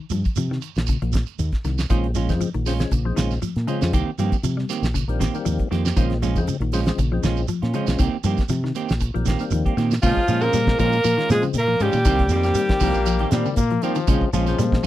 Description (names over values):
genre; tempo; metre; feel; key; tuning
afrobeat; 118 BPM; 4/4; swing 53% on 16ths; Bb dorian; A4 = 440 Hz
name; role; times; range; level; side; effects
clean electric guitar; arpeggios; 0.0-14.9 s; Db3 to G3; -28 LUFS; left 6 dB; none
fingered electric bass; bass; 0.0-14.9 s; Bb1 to C3; -23 LUFS; equal; none
damped 70s drum kit; drums; 0.1-14.9 s; crash cymbal, hi-hat, kick drum, snare drum; -23 LUFS; equal; none
shekere; percussion; 0.1-14.9 s; none; -31 LUFS; right 6 dB; none
percussive tonewheel organ; accompaniment; 1.9-14.9 s; Db3 to Db4; -29 LUFS; left 6 dB; chorus vibrato, slow rotary speaker
clean electric guitar; stabs; 1.9-14.9 s; Eb3 to G4; -26 LUFS; right 8 dB; none
edgy alto saxophone; melody; 10.0-13.3 s; F4 to Bb4; -21 LUFS; equal; none
edgy tenor saxophone; second line; 10.1-13.3 s; F3 to Bb3; -28 LUFS; right 3 dB; none
brilliant bass trombone; second line; 12.8-14.9 s; F3 to Bb3; -27 LUFS; left 9 dB; none
room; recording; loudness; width
light reverb; dry, close 1970s-style studio recording; -19 LUFS; side -14 dB against mid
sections
0.0-10.0 A section; 10.0-14.9 B section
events
none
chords
0.0 Cm7; 1.9 Bbm7; 3.9 Cm7; 6.0 Bbm7; 8.0 Cm7; 10.0 Bbm7; 12.1 Cm7; 14.1 Bbm7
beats
0.38 0.89 1.39 | 1.90 2.41 2.92 3.43 | 3.94 4.45 4.96 5.46 | 5.97 6.48 6.99 7.50 | 8.01 8.51 9.02 9.53 | 10.04 10.54 11.05 11.55 | 12.06 12.57 13.07 13.58 | 14.08 14.59